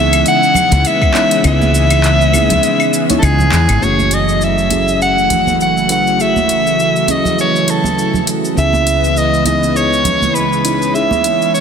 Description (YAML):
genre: sunset chillout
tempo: 101 BPM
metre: 4/4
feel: swing 56% on 16ths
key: F# dorian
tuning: A4 = 440 Hz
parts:
  - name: bright soprano saxophone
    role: melody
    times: 0.0-11.6 s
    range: G#4 to F#5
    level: -14 LUFS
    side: equal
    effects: ping-pong delay
  - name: mellow FM electric piano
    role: accompaniment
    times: 0.0-11.6 s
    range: A3 to C#5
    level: -20 LUFS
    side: left 1 dB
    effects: chorus, auto-pan, low-pass filter, tape echo
  - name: lush unison pad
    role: sustained chords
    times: 0.0-11.6 s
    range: C#3 to C#4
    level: -18 LUFS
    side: right 2 dB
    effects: chorus
  - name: woody fretless electric bass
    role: bass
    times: 0.0-11.6 s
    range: F#1 to E2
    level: -16 LUFS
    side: equal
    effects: ensemble chorus
  - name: smooth R&B drum kit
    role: drums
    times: 0.1-11.6 s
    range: claves, handclaps, hi-hat, shaker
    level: -21 LUFS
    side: left 1 dB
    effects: studio reverb
  - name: congas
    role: percussion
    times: 0.5-11.2 s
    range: none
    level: -23 LUFS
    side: right 3 dB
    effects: none
  - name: electronic kick drum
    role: drums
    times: 1.0-1.1 s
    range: none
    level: -15 LUFS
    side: equal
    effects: studio reverb
room: moderate lush hall reverb, RT60 2.1 s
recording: dense, heavily limited modern master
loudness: -11 LUFS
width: side -7 dB against mid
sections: 0.0-3.8 A section; 3.8-11.6 B section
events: kick drops out 1.4-3.8; filter sweep on FM electric piano 3.8-11.6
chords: 0.0 C#m7; 3.8 F#m7; 8.6 C#m7